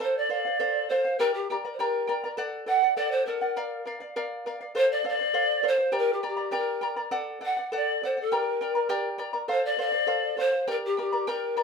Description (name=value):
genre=andean folk, Andean ensemble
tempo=101 BPM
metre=2/4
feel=straight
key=G minor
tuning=A4 = 444 Hz
part: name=breathy mellow pan flute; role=melody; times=0.0-11.6 s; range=G4 to F#5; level=-25 LUFS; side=equal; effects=none
part: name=charango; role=accompaniment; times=0.0-11.6 s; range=G4 to Bb5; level=-30 LUFS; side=equal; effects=none
room=moderate studio reverb, RT60 0.6 s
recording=minimal, uncompressed stereo recording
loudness=-24 LUFS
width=side -5 dB against mid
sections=0.0-9.5 A section; 9.5-11.6 A section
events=none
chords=0.0 F; 1.2 Gm; 2.4 D; 3.6 Bb; 4.8 F; 5.9 Gm; 7.1 D; 8.3 Gm; 9.5 F; 10.7 Gm